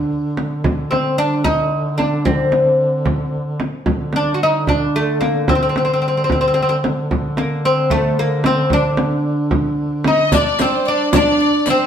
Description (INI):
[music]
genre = Arabic maqam ensemble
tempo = 74 BPM (dotted quarters)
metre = 6/8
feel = straight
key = D maqam hijaz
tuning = A4 = 441 Hz
[part]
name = oud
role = melody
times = 0.0-11.9 s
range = A3 to F#4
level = -17 LUFS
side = equal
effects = none
[part]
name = clear duduk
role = drone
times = 0.0-10.4 s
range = D3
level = -22 LUFS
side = equal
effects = none
[part]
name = frame drum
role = percussion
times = 0.4-11.8 s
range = none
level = -20 LUFS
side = right 1 dB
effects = none
[part]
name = dark studio violin section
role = second line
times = 10.1-11.9 s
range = C5 to Eb5+25c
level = -22 LUFS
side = equal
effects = none
[part]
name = dark violin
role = second line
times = 10.1-11.9 s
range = C5 to Eb5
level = -21 LUFS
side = left 5 dB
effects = none
[part]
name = riq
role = percussion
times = 10.3-11.8 s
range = none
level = -26 LUFS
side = left 3 dB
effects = none
[sound]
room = wet stone room reverb, RT60 1.0 s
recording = band playing live in one room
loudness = -15 LUFS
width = side -8 dB against mid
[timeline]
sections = 0.0-10.3 A section; 10.3-11.9 B section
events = none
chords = none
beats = | 0.64 1.45 | 2.25 3.06 | 3.87 4.68 | 5.49 6.29 | 7.10 7.91 | 8.72 9.52 | 10.33 11.14